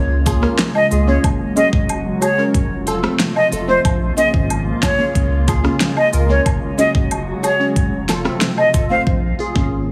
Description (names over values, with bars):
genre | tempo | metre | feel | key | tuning
dancehall | 92 BPM | 4/4 | straight | Bb minor | A4 = 441 Hz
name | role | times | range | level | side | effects
glassy FM pad | sustained chords | 0.0-9.1 s | C3 to Gb4 | -27 LUFS | equal | ensemble chorus, built-in reverb, sidechain pumping
saturated sub bass | bass | 0.0-9.9 s | F1 to Db2 | -22 LUFS | equal | none
glassy wavetable pluck | accompaniment | 0.3-9.7 s | Ab3 to C5 | -24 LUFS | equal | chorus, sidechain pumping
pop drum kit | drums | 0.3-9.7 s | hi-hat, kick drum, rim click, snare drum | -21 LUFS | equal | none
cabasa and woodblock | percussion | 0.3-8.9 s | none | -29 LUFS | equal | none
silver concert flute | melody | 0.8-9.0 s | C5 to F5 | -21 LUFS | equal | tape echo
room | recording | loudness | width
light reverb | heavily compressed radio sound, small room reverb | -17 LUFS | mono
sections
0.0-9.1 A section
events
none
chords
0.0 Db6; 1.2 Gbsus2; 2.5 F; 3.9 Bbm7; 5.2 Db6; 6.5 Gbsus2; 7.8 F; 9.1 Bbm7